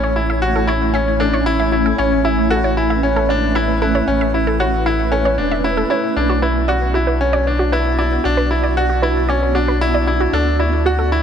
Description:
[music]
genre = piano and strings electronica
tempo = 115 BPM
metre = 4/4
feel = straight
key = A major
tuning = A4 = 440 Hz
[part]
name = granular cloud pad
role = sustained chords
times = 0.0-11.2 s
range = A3 to D5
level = -20 LUFS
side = equal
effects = built-in reverb
[part]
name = wide unison pluck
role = arpeggios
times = 0.0-11.0 s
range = F#4 to E5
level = -23 LUFS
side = right 3 dB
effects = cassette tape, ping-pong delay
[part]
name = bright grand piano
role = riff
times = 0.0-11.2 s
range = C#4 to F#4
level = -18 LUFS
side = left 1 dB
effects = ping-pong delay
[part]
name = warm sub bass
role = bass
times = 0.0-11.2 s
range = E1 to D2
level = -20 LUFS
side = equal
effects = tube saturation
[sound]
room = light reverb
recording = none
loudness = -14 LUFS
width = side -8 dB against mid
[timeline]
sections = 0.0-11.2 A section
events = none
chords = 0.0 A; 6.2 Bm; 10.3 D

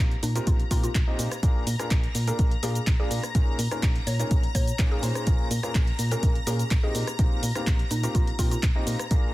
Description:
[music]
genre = piano house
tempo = 125 BPM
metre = 4/4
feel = straight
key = unclear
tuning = A4 = 441 Hz
[part]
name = analog string pad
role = sustained chords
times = 0.0-9.3 s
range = Bb5 to Bb6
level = -37 LUFS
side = left 3 dB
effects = ensemble chorus, sidechain pumping
[part]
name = clear upright piano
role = riff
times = 0.0-9.3 s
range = Bb2 to Eb5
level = -33 LUFS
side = left 1 dB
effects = sidechain pumping, digital delay
[part]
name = solid FM bass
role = bass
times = 0.0-9.2 s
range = Bb1 to Bb2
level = -28 LUFS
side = equal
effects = sidechain pumping
[part]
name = punchy analog drum machine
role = drums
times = 0.1-9.2 s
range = handclaps, hi-hat, rim click, shaker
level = -33 LUFS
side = equal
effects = none
[part]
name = mallet-like synth pluck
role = melody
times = 0.2-8.6 s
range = Eb4 to Db5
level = -36 LUFS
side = equal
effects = chorus, digital delay
[part]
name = electronic kick drum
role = drums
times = 0.5-9.2 s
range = none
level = -23 LUFS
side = equal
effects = none
[sound]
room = digital ambience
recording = dense, heavily limited modern master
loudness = -22 LUFS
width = side -17 dB against mid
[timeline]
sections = 0.0-9.3 A section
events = none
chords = 0.0 Cm7/Bb; 1.4 Bb7; 3.3 Eb7sus4/Bb; 5.3 Bbm7; 6.9 Cm7/Bb

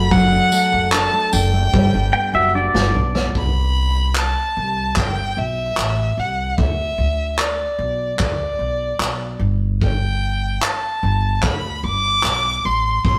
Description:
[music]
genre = acoustic pop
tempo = 74 BPM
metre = 4/4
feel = straight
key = G major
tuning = A4 = 438 Hz
[part]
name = warm violin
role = melody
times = 0.0-13.2 s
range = D5 to D6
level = -23 LUFS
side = equal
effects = none
[part]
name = nylon-string guitar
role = accompaniment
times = 0.0-3.9 s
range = F#3 to F#4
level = -23 LUFS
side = equal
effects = none
[part]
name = upright bass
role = bass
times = 0.0-13.2 s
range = F#1 to D2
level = -23 LUFS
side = equal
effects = none
[part]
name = unplugged drum kit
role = drums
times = 0.1-13.2 s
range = handclaps, kick drum, snare drum, tambourine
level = -24 LUFS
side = equal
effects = none
[part]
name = pedal steel guitar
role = second line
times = 2.1-3.3 s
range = D5 to G5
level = -21 LUFS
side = equal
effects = none
[sound]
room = moderate stone room reverb, RT60 1.0 s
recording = rough rehearsal-room recording, tube saturation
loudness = -19 LUFS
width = mono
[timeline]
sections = 0.0-3.4 A section; 3.4-13.2 B section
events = drum fill 1.7-3.4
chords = 0.0 D/F#; 1.7 Gmaj7; 3.4 C6; 6.6 Bmadd11; 9.4 G5; 12.6 Am

